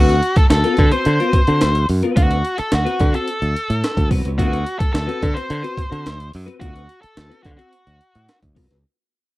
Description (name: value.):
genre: funk.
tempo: 108 BPM.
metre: 4/4.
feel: straight.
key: D mixolydian.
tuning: A4 = 439 Hz.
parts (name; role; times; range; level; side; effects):
octave-fuzz lead guitar; melody; 0.0-8.4 s; F#4 to C5; -22 LUFS; left 1 dB; distortion.
clean electric guitar; accompaniment; 0.0-8.8 s; C4 to C5; -24 LUFS; left 4 dB; ensemble chorus.
modern bright fingered electric bass; bass; 0.0-8.8 s; C2 to D3; -19 LUFS; equal; none.
breakbeat sampler-style drum kit; drums; 0.1-8.8 s; hi-hat, kick drum, snare drum; -17 LUFS; equal; none.
room: digital ambience.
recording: dry, close 1970s-style studio recording.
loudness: -15 LUFS.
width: side -18 dB against mid.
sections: 0.0-8.8 A section.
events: fade-out 0.0-8.8.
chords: 0.0 D6.